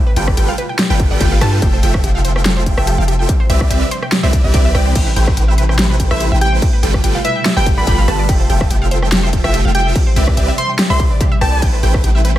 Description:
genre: future bass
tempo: 144 BPM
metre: 4/4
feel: swing 54% on 16ths, half-time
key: unclear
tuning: A4 = 440 Hz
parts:
  - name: ethereal airy pad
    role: sustained chords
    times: 0.1-12.4 s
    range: B2 to E5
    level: -27 LUFS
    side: equal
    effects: ensemble chorus, built-in reverb, sidechain pumping
  - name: wide unison pluck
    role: arpeggios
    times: 0.1-12.4 s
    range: G4 to G5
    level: -26 LUFS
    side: right 2 dB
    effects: sidechain pumping, digital delay
  - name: wide unison pluck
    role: arpeggios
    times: 0.2-12.4 s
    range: E5 to A5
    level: -27 LUFS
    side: equal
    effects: sidechain pumping, digital delay
  - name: supersaw chords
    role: riff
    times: 0.2-12.4 s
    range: F3 to A5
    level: -21 LUFS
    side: right 1 dB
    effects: phaser, sidechain pumping
  - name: long sustained 808-style bass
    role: bass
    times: 0.2-12.4 s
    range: F1 to G2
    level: -16 LUFS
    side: equal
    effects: sidechain pumping
  - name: dubstep drum kit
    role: drums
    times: 0.2-12.4 s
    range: crash cymbal, hi-hat, rim click, snare drum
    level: -20 LUFS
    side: equal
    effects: none
  - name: electronic kick drum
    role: drums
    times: 0.3-12.0 s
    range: none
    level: -16 LUFS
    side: equal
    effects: distortion
  - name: plucky unison lead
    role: melody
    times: 6.1-11.7 s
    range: E5 to C6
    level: -20 LUFS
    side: equal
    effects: sidechain pumping, digital delay
room: digital ambience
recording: none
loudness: -12 LUFS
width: side -13 dB against mid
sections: 0.0-12.4 A section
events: none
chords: 0.0 G9; 1.6 Fmaj9; 3.3 Cmaj9; 5.0 Am9; 6.6 G9; 8.3 Fmaj9; 10.0 Cmaj9; 11.6 Am9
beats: 0.37 0.79 1.21 | 1.62 2.04 2.46 2.87 | 3.29 3.71 4.12 4.54 | 4.96 5.37 5.79 6.21 | 6.62 7.04 7.46 7.87 | 8.29 8.71 9.12 9.54 | 9.96 10.37 10.79 11.21 | 11.62 12.04

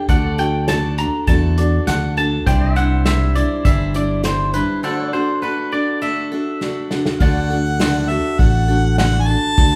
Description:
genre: honky-tonk and classic country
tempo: 101 BPM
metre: 4/4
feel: straight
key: unclear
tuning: A4 = 440 Hz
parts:
  - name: twangy electric guitar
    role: second line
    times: 0.0-7.0 s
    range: A4 to Bb5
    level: -25 LUFS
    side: equal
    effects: none
  - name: picked steel-string acoustic guitar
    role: accompaniment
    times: 0.0-9.8 s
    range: C3 to C5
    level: -24 LUFS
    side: equal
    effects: none
  - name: pedal steel guitar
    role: sustained chords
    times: 0.0-9.8 s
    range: A4 to F#5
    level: -34 LUFS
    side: equal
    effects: none
  - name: fingered electric bass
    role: bass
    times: 0.1-9.8 s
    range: G1 to E2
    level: -21 LUFS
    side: equal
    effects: none
  - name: unplugged drum kit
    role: drums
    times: 0.1-9.7 s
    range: hi-hat, kick drum, snare drum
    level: -21 LUFS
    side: equal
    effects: none
  - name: clear harmonica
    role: melody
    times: 7.2-9.8 s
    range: E5 to A5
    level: -23 LUFS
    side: equal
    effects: none
room: moderate large studio reverb, RT60 1.1 s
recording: band playing live in one room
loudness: -18 LUFS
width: mono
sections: 0.0-7.2 A section; 7.2-9.8 B section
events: clean electric guitar solo 0.0-7.2; break 4.8-7.2; drum fill 6.6-7.2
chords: 0.1 D; 2.5 Cadd9; 4.8 D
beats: | 0.09 0.68 1.28 1.87 | 2.46 3.06 3.65 4.24 | 4.84 5.43 6.02 6.62 | 7.21 7.80 8.40 8.99 | 9.58

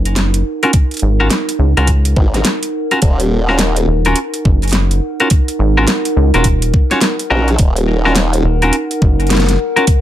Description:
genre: glitch hop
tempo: 105 BPM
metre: 4/4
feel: swing 63% on 16ths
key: Eb minor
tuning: A4 = 440 Hz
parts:
  - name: rubbery square bass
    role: bass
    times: 0.0-9.6 s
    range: Eb1 to Db2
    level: -13 LUFS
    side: equal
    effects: none
  - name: warbly tape-like pad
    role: texture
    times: 0.0-10.0 s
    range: Eb4 to Gb5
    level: -20 LUFS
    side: equal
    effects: chorus, built-in reverb, sidechain pumping
  - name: dubstep drum kit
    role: drums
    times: 0.1-10.0 s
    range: hi-hat, snare drum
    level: -17 LUFS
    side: equal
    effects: none
  - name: clean electric guitar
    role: stabs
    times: 0.6-9.8 s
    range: Db4 to Db5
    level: -16 LUFS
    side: left 1 dB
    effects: sidechain pumping, digital delay
  - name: electronic kick drum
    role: drums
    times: 0.7-10.0 s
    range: none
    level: -12 LUFS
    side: equal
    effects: none
  - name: formant-sweep wobble bass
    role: bass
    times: 2.2-3.9, 7.3-8.4 s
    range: Eb1 to Bb1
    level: -14 LUFS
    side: equal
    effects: chorus
room: little or no reverb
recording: none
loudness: -11 LUFS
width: side -12 dB against mid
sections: 0.0-10.0 A section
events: none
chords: 0.0 Ebm7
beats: 0.16 | 0.74 1.31 1.88 2.45 | 3.02 3.59 4.16 4.74 | 5.31 5.88 6.45 7.02 | 7.59 8.16 8.74 9.31 | 9.88

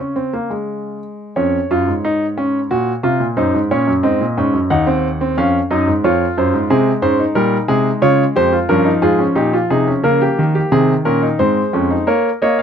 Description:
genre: classical, baroque-style 4-part fugue for grand piano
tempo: 90 BPM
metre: 4/4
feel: straight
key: Db major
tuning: A4 = 439 Hz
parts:
  - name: warm baby grand piano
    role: solo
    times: 0.0-12.6 s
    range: Eb2 to Gb5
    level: -13 LUFS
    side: equal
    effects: none
room: light reverb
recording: dark, warm production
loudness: -13 LUFS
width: side -8 dB against mid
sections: 0.0-1.4 A section; 1.4-12.1 B section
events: none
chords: 0.0 Db; 1.4 Db/F; 2.7 Gb/Bb; 4.0 Ab; 5.4 Db/F; 6.7 Ab; 8.0 Db; 9.4 Eb/Bb; 10.7 Ab; 12.1 Bbm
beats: 0.68 | 1.37 2.04 2.71 3.37 | 4.04 4.70 5.37 6.03 | 6.70 7.36 8.03 8.69 | 9.37 10.04 10.72 11.39 | 12.08

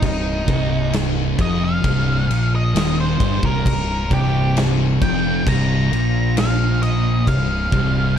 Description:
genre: stoner and doom metal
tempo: 66 BPM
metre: 4/4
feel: straight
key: C minor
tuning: A4 = 440 Hz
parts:
  - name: octave-fuzz lead guitar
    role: melody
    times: 0.0-8.2 s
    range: Eb4 to Bb5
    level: -25 LUFS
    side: right 1 dB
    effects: distortion, tape echo
  - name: thick fuzz guitar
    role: riff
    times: 0.0-8.2 s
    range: C2 to Bb2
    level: -22 LUFS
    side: left 8 dB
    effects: distortion
  - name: thick fuzz guitar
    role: riff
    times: 0.0-8.2 s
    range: C2 to Bb2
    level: -22 LUFS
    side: right 6 dB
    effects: distortion
  - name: fuzz fingered electric bass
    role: bass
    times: 0.0-8.2 s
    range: C1 to Bb1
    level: -25 LUFS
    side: equal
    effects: overdrive
  - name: big rock drum kit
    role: drums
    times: 0.0-7.9 s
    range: crash cymbal, kick drum, snare drum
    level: -24 LUFS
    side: equal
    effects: none
  - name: distorted electric guitar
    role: riff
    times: 3.7-8.2 s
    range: C2 to Bb2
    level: -25 LUFS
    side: equal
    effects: distortion
room: studio ambience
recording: dark, warm production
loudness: -16 LUFS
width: side -8 dB against mid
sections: 0.0-8.2 A section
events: lead electric guitar solo 0.0-8.2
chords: 0.0 Cm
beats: | 0.02 0.93 1.83 2.74 | 3.65 4.55 5.46 6.36 | 7.27 8.17

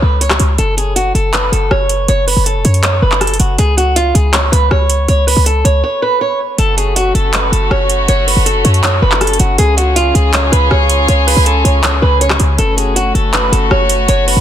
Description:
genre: hip hop, trap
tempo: 160 BPM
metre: 4/4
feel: half-time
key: F# harmonic minor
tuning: A4 = 440 Hz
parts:
  - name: picked swing-style acoustic guitar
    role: melody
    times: 0.0-14.4 s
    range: E#4 to C#5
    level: -15 LUFS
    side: right 1 dB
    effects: low-pass filter, tape echo
  - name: short 808-style bass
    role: bass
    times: 0.0-14.4 s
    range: E#1 to F#2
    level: -13 LUFS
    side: equal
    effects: none
  - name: trap drum kit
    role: drums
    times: 0.2-14.4 s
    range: handclaps, hi-hat, rim click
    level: -16 LUFS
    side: equal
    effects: overdrive
  - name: warm chamber string section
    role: sustained chords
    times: 6.6-14.4 s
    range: C#3 to G#4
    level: -18 LUFS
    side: left 2 dB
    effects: none
room: small room ambience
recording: dense, heavily limited modern master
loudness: -10 LUFS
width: side -10 dB against mid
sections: 0.0-6.6 A section; 6.6-14.4 B section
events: break 5.8-6.6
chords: 0.0 C#7(no3); 0.6 F#5; 3.6 N.C.; 6.6 F#m; 9.6 C#; 12.6 F#m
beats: 0.21 | 0.58 0.96 1.33 1.71 | 2.08 2.46 2.83 3.21 | 3.58 3.96 4.33 4.71 | 5.08 5.46 5.83 6.21 | 6.58 6.96 7.33 7.71 | 8.09 8.46 8.84 9.21 | 9.59 9.96 10.34 10.71 | 11.09 11.46 11.84 12.21 | 12.59 12.96 13.34 13.71 | 14.09

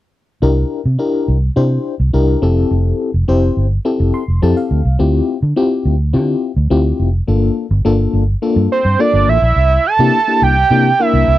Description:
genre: early-eighties boogie funk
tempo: 105 BPM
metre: 4/4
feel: straight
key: unclear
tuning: A4 = 440 Hz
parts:
  - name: FM electric piano with tremolo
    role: accompaniment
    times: 0.4-11.4 s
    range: Bb3 to C6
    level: -16 LUFS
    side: left 4 dB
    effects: none
  - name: vintage muted fingered electric bass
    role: bass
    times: 0.4-11.4 s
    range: F1 to D3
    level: -14 LUFS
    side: equal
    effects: none
  - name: fat analog lead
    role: melody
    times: 8.7-11.4 s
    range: C5 to A5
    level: -13 LUFS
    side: right 4 dB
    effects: none
room: little or no reverb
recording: dry, close 1970s-style studio recording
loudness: -12 LUFS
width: side -14 dB against mid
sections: 0.4-9.6 A section; 9.6-11.4 B section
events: FM electric piano fill 3.9-5.0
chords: 0.4 C9; 2.4 Fmaj9; 5.0 Dm11; 7.3 Gm7; 9.6 C9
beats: | 0.42 0.99 1.57 2.14 | 2.71 3.28 3.85 4.42 | 4.99 5.57 6.14 6.71 | 7.28 7.85 8.42 8.99 | 9.57 10.14 10.71 11.28

